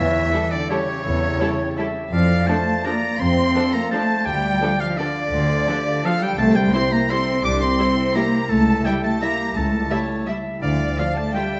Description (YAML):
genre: classical, orchestral ballroom waltz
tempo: 169 BPM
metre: 3/4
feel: uneven beats, rubato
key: D minor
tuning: A4 = 439 Hz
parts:
  - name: bright clarinet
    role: second line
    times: 0.0-11.6 s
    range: F4 to F5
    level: -33 LUFS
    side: equal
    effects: none
  - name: bright oboe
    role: second line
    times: 0.0-11.6 s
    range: C#5 to D6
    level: -28 LUFS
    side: equal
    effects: none
  - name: large flute ensemble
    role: second line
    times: 0.0-11.6 s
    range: C#5 to D6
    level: -33 LUFS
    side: equal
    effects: none
  - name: warm studio violin section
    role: second line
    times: 0.0-11.6 s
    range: C#5 to D6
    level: -34 LUFS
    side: equal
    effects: none
  - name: mellow French horn section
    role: sustained chords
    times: 0.0-11.6 s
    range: C#3 to D4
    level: -30 LUFS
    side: equal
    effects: none
  - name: concert harp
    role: arpeggios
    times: 0.0-11.6 s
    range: C3 to A5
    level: -32 LUFS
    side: equal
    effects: none
  - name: rich studio double bass section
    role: bass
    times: 0.0-10.9 s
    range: C2 to F2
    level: -27 LUFS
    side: equal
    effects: none
  - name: warm studio cello section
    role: bass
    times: 0.0-11.6 s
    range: C#3 to D4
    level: -26 LUFS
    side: equal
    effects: none
  - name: dark studio violin section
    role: melody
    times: 0.3-11.4 s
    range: A4 to E5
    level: -36 LUFS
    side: equal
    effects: none
  - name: rich studio viola section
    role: accompaniment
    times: 0.3-11.4 s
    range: F3 to F4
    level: -32 LUFS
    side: equal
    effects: none
room: wet recital hall reverb, RT60 1.4 s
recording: nothing above 8.0 kHz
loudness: -20 LUFS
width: mono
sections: 0.0-11.6 A section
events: none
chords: 0.0 A7/E; 2.1 Dm/F; 4.3 Dm; 6.4 C; 8.5 A7/C#; 10.6 Dm